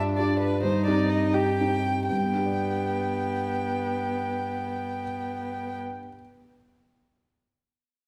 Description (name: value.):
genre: quick classical-period movement for piano quartet.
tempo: 83 BPM (dotted quarters).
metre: 6/8.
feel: rubato.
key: G major.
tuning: A4 = 441 Hz.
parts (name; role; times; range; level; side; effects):
warm violin; melody; 0.0-5.8 s; B4 to G5; -33 LUFS; equal; none.
dark baby grand piano; accompaniment; 0.0-6.2 s; G2 to D5; -30 LUFS; equal; none.
warm viola; accompaniment; 0.0-5.8 s; B3 to G4; -32 LUFS; equal; none.
room: wet scoring stage reverb, RT60 1.6 s.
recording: none.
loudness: -27 LUFS.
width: mono.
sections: 0.0-2.1 A section; 2.1-5.0 B section.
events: slowing down 0.0-2.1.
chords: 0.0 G5; 0.6 Cm/G; 2.1 G.